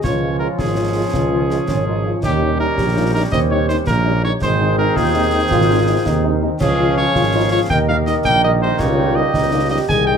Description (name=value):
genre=military-style march for wind band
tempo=110 BPM (dotted quarters)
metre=6/8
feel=straight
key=unclear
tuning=A4 = 439 Hz
part: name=warm cornet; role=melody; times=0.0-10.2 s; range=G4 to Ab5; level=-21 LUFS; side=right 1 dB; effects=none
part: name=dark woodwind section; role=second line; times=0.0-10.2 s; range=F4 to F5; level=-26 LUFS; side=left 3 dB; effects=none
part: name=warm euphonium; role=second line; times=0.0-10.2 s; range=Ab3 to Ab4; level=-23 LUFS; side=equal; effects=none
part: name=clear trombone section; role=sustained chords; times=0.0-10.2 s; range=Eb3 to Db4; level=-24 LUFS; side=right 2 dB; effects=none
part: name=mellow tuba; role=bass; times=0.0-10.2 s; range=Ab1 to Eb2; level=-19 LUFS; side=right 2 dB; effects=none
part: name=concert snare drum, concert bass drum and clash cymbals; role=drums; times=0.0-10.1 s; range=none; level=-25 LUFS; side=left 1 dB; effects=none
part: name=dark French horn section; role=accompaniment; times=0.2-10.1 s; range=F3 to F4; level=-25 LUFS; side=left 3 dB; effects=none
room=wet small room reverb, RT60 0.5 s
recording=heard from further back in the room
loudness=-14 LUFS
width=side -7 dB against mid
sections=0.0-10.2 A section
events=none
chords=0.0 Db; 2.2 Eb7; 4.4 Ab; 6.6 Db; 7.7 Eb; 8.8 Eb7/Db